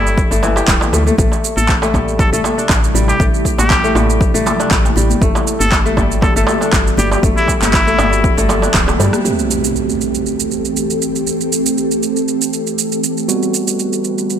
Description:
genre	afro house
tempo	119 BPM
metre	4/4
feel	swing 54% on 16ths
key	A dorian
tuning	A4 = 441 Hz
part	trumpet with straight mute	melody	0.0-8.3 s	E4 to A4	-21 LUFS	left 1 dB	ping-pong delay
part	kora	arpeggios	0.0-10.4 s	E3 to A4	-20 LUFS	left 2 dB	sidechain pumping, low-pass filter, ping-pong delay
part	woody FM bass	bass	0.0-9.1 s	D1 to G2	-18 LUFS	equal	sidechain pumping
part	electronic shaker, handclaps and rim click	drums	0.1-14.4 s	none	-20 LUFS	right 3 dB	overdrive, studio ambience
part	congas	percussion	0.1-9.2 s	none	-24 LUFS	left 2 dB	none
part	electronic kick drum	drums	0.2-8.9 s	none	-16 LUFS	equal	overdrive, studio ambience
part	darbuka	percussion	0.3-9.1 s	none	-23 LUFS	right 4 dB	none
part	ethereal airy pad	sustained chords	1.9-14.4 s	C3 to B4	-20 LUFS	equal	ensemble chorus, built-in reverb, sidechain pumping
part	overdriven tine electric piano	stabs	9.2-14.4 s	G3 to G4	-20 LUFS	right 5 dB	sidechain pumping, low-pass filter, ping-pong delay
part	impact	sound effects	9.2-11.3 s	none	-25 LUFS	equal	none
room	light reverb, small room ambience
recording	none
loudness	-12 LUFS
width	side -9 dB against mid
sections	0.0-9.2 A section; 9.2-14.4 B section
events	drum fill 8.7-9.2; band accent 9.1; impact 9.2-11.3; filter sweep on tine electric piano 9.2-14.4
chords	0.0 G5; 1.2 Am7; 5.2 Gmaj7; 9.2 Am7; 13.3 Gmaj7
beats	0.17 0.68 | 1.18 1.69 2.19 2.70 | 3.20 3.70 4.21 4.71 | 5.22 5.72 6.22 6.73 | 7.23 7.74 8.24 8.75 | 9.25 9.76 10.26 10.76 | 11.27 11.77 12.28 12.78 | 13.28 13.79 14.29

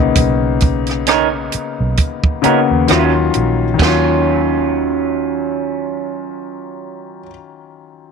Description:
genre	R&B, neo-soul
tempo	66 BPM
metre	4/4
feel	swing 57% on 16ths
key	Eb minor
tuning	A4 = 444 Hz
part	warm grand piano	accompaniment	0.0-8.1 s	C#3 to F#4	-18 LUFS	left 10 dB	none
part	vintage muted fingered electric bass	bass	0.0-7.3 s	Bb1 to D#2	-19 LUFS	right 2 dB	none
part	compact cocktail drum kit	drums	0.2-4.0 s	hi-hat, kick drum, rim click, snare drum, splash cymbal	-17 LUFS	right 2 dB	none
part	electric guitar through a small old amp	second line	1.1-7.3 s	Gb3 to A#4	-19 LUFS	right 12 dB	none
room	moderate spring reverb, RT60 2.8 s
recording	1960s-style stereo with parts hard left and right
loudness	-13 LUFS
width	side -5 dB against mid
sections	0.0-3.8 A section; 3.8-7.4 B section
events	none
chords	0.0 Bmaj9; 2.9 Ebm9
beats	| 0.15 1.06 1.97 2.88 | 3.79 4.70 5.61 6.52

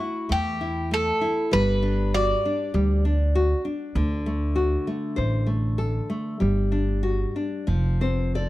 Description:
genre	fado-style ballad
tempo	98 BPM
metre	4/4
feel	rubato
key	G major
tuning	A4 = 440 Hz
part	Greek bouzouki	melody	0.0-3.6 s	F#4 to D5	-25 LUFS	equal	none
part	nylon-string guitar	accompaniment	0.0-8.5 s	D3 to D5	-26 LUFS	left 2 dB	none
part	upright bass	bass	0.3-8.5 s	F1 to E2	-24 LUFS	right 1 dB	none
room	small room ambience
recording	dry, close 1970s-style studio recording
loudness	-22 LUFS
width	side -16 dB against mid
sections	0.0-8.5 A section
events	nylon-string guitar fill 7.7-8.5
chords	0.0 A5; 1.5 Gmaj7; 3.9 D7; 6.4 G5; 7.7 F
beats	0.30 0.92 | 1.53 2.14 2.75 3.35 | 3.95 4.56 5.17 5.79 | 6.41 7.03 7.68 8.36

